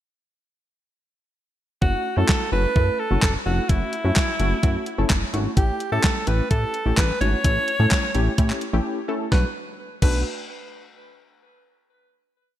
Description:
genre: dance-pop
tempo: 128 BPM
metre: 4/4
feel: straight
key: unclear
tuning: A4 = 442 Hz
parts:
  - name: bright alto saxophone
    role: melody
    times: 1.8-10.2 s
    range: E4 to C#5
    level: -26 LUFS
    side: equal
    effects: digital delay
  - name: funky polysynth comp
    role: accompaniment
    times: 1.8-10.2 s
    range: A3 to A4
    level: -28 LUFS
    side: left 1 dB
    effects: chorus, sidechain pumping
  - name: chorused synth bass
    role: bass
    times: 1.8-10.2 s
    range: E#1 to A2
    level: -22 LUFS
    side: equal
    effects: sidechain pumping
  - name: crisp 8-bit digital drum machine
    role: drums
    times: 1.8-10.1 s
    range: crash cymbal, handclaps, hi-hat, kick drum, snare drum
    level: -22 LUFS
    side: equal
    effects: gated reverb
room: light reverb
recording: bright 1980s-style digital production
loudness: -19 LUFS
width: side -12 dB against mid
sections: 1.8-9.3 pre-chorus; 9.3-11.2 final chord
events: break 8.8-9.3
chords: 1.8 F#m7; 5.6 A7; 9.3 Bm7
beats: | 1.82 2.29 2.76 3.23 | 3.69 4.16 4.63 5.10 | 5.57 6.04 6.51 6.97 | 7.44 7.91 8.38 8.85 | 9.32 9.79

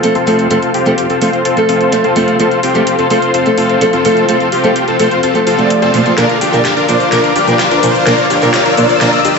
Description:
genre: EDM, festival progressive house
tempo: 127 BPM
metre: 4/4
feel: straight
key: F major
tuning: A4 = 440 Hz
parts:
  - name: fingerpicked acoustic archtop guitar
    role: accompaniment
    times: 0.0-9.4 s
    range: Bb2 to D5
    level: -14 LUFS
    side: right 1 dB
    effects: ping-pong delay
  - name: lush unison pad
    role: sustained chords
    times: 0.0-9.4 s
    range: A4 to E6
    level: -17 LUFS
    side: left 3 dB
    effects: chorus
  - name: dense compressed supersaw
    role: riff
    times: 0.0-9.4 s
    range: C4 to C5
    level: -14 LUFS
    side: left 1 dB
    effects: low-pass filter, ping-pong delay
  - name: saturated sub bass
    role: bass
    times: 0.0-9.4 s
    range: none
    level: barely audible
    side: none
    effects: none
  - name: big-room dance drum kit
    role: drums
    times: 0.0-9.4 s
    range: cabasa, hi-hat, snare drum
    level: -21 LUFS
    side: equal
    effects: overdrive, high-pass filter on hats, high-pass filter on snare, high-pass filter on perc
  - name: riser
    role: sound effects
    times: 2.5-9.4 s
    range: none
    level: -22 LUFS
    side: left 2 dB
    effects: none
room: wet recital hall reverb, RT60 1.5 s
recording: nothing above 8.0 kHz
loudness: -9 LUFS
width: side -4 dB against mid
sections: 0.0-9.4 A section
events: build-up 0.0-9.4; riser 2.5-9.4; drum fill 6.2-9.4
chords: 0.0 F; 6.2 Bb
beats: 0.03 | 0.51 0.98 1.45 1.92 | 2.40 2.87 3.34 3.81 | 4.29 4.76 5.23 5.70 | 6.18 6.65 7.12 7.59 | 8.06 8.54 9.01

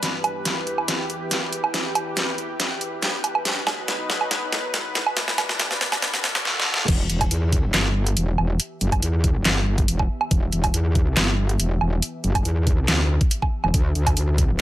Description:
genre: heavy wobble dubstep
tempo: 140 BPM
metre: 4/4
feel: half-time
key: E minor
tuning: A4 = 440 Hz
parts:
  - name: lush unison pad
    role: sustained chords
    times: 0.0-14.6 s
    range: D2 to E5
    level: -31 LUFS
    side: equal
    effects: chorus, sidechain pumping
  - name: dubstep drum kit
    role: drums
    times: 0.0-14.5 s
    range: crash cymbal, handclaps, hi-hat, snare drum, woodblock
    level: -22 LUFS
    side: right 1 dB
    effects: overdrive
  - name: metallic wobble bass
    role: bass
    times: 6.9-14.6 s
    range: E1 to E2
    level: -21 LUFS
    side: equal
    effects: chorus, overdrive
  - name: electronic kick drum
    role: drums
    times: 6.9-14.5 s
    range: none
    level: -22 LUFS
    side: equal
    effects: overdrive
room: light reverb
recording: high-pass filter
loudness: -20 LUFS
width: side -14 dB against mid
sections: 0.0-6.9 A section; 6.9-14.6 B section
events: build-up 0.0-6.9; filter sweep 0.0-6.9; drum fill 0.0-6.5, 6.5-6.9; drop 6.9-14.6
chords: 0.0 Em; 3.5 B; 5.2 G; 6.0 D; 6.9 Em; 13.7 Dadd9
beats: | 0.03 0.45 0.88 1.31 | 1.74 2.17 2.60 3.02 | 3.45 3.88 4.31 4.74 | 5.17 5.60 6.03 6.45 | 6.88 7.31 7.74 8.17 | 8.60 9.03 9.45 9.88 | 10.31 10.74 11.17 11.60 | 12.03 12.45 12.88 13.31 | 13.74 14.17 14.60

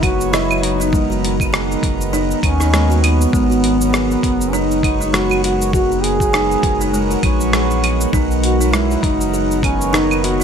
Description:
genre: organic downtempo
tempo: 100 BPM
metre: 4/4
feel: swing 57% on 16ths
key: G# minor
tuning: A4 = 440 Hz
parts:
  - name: mellow duduk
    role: melody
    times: 0.0-10.4 s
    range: B3 to G#4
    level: -20 LUFS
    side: left 1 dB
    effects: ping-pong delay, shimmer reverb
  - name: pedal harmonium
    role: accompaniment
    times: 0.0-10.4 s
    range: D#3 to C#5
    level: -24 LUFS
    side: right 5 dB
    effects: sidechain pumping, digital delay, shimmer reverb
  - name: bowed-like drone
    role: sustained chords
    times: 0.0-10.4 s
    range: F#3 to F#5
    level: -23 LUFS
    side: right 2 dB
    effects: built-in reverb, sidechain pumping, shimmer reverb
  - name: buzzing kalimba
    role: arpeggios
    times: 0.0-10.4 s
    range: G#3 to D#5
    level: -22 LUFS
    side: right 1 dB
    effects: digital delay, shimmer reverb
  - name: round analog bass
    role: bass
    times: 0.0-10.4 s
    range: F#1 to D#2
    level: -20 LUFS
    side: left 1 dB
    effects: sidechain pumping
  - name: dusty soul sampler-style drum kit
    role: drums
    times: 0.0-10.4 s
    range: cabasa, claves, hi-hat, rim click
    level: -22 LUFS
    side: equal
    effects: none
  - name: electronic kick drum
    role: drums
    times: 0.0-9.8 s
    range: none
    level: -19 LUFS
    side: left 1 dB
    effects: none
room: light reverb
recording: bright 1980s-style digital production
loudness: -14 LUFS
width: side -7 dB against mid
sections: 0.0-10.4 A section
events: kick drops out 2.7-3.3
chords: 0.0 G#m9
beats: 0.33 | 0.93 1.53 2.13 2.73 | 3.33 3.93 4.53 5.13 | 5.73 6.33 6.93 7.53 | 8.13 8.73 9.33 9.93

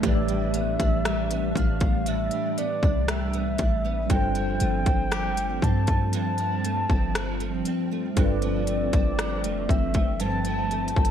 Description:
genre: contemporary R&B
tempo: 59 BPM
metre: 4/4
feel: straight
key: unclear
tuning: A4 = 440 Hz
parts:
  - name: mellow horn-like synth lead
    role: melody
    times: 0.0-11.1 s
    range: D5 to A5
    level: -30 LUFS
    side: equal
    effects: chorus
  - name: mellow tine electric piano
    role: accompaniment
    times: 0.0-11.1 s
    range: E3 to D5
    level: -32 LUFS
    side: left 1 dB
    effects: medium stereo tremolo
  - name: hollow soft pad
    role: sustained chords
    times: 0.0-11.1 s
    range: F3 to D4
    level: -31 LUFS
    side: equal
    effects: ensemble chorus
  - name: nylon-string guitar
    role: arpeggios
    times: 0.0-11.1 s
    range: G2 to D4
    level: -32 LUFS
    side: right 6 dB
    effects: ensemble chorus
  - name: clean 808-style bass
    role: bass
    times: 0.0-11.1 s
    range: F1 to G2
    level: -28 LUFS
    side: equal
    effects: none
  - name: trap drum kit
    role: drums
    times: 0.0-11.1 s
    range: hi-hat, kick drum, rim click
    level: -25 LUFS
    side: equal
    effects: vintage 12-bit sampler grit, gated reverb
  - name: downlifter and swell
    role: sound effects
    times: 0.0-11.1 s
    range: none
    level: -49 LUFS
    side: right 1 dB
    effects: none
  - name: koto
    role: texture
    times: 5.1-7.2 s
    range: G4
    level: -40 LUFS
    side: left 2 dB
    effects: digital delay
room: light reverb, digital ambience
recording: bright 1980s-style digital production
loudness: -22 LUFS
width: side -9 dB against mid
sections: 0.0-11.1 A section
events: none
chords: 0.0 A9sus4; 4.1 G9sus4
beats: | 0.03 1.05 2.07 3.08 | 4.10 5.12 6.13 7.15 | 8.17 9.19 10.20

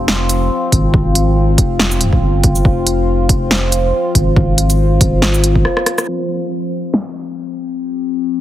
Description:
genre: deep dubstep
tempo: 140 BPM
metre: 4/4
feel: swing 55% on 16ths, half-time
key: F minor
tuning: A4 = 439 Hz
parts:
  - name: overtone-sweeping drone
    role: sustained chords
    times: 0.0-8.4 s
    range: F3 to G4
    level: -18 LUFS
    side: left 2 dB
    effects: chorus, built-in reverb
  - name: saturated sub bass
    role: bass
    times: 0.0-5.7 s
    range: F1 to Ab1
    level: -15 LUFS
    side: equal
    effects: none
  - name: deep house drum kit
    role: drums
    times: 0.1-8.4 s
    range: hi-hat, rim click, shaker, snare drum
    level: -16 LUFS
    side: equal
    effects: none
  - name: electronic kick drum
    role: drums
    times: 0.7-5.6 s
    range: none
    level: -15 LUFS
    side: equal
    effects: none
room: light reverb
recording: heavily compressed radio sound, low-pass filter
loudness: -12 LUFS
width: side -12 dB against mid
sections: 0.0-6.1 A section; 6.1-8.4 B section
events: break 5.7-6.1; drum fill 5.7-6.1; band accent 6.0; filter sweep 6.1-8.4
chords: 0.0 Fm; 6.1 F5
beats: 0.08 0.51 | 0.94 1.37 1.79 2.22 | 2.65 3.08 3.51 3.94 | 4.37 4.79 5.22 5.65 | 6.08 6.51 6.94 7.37 | 7.79 8.22

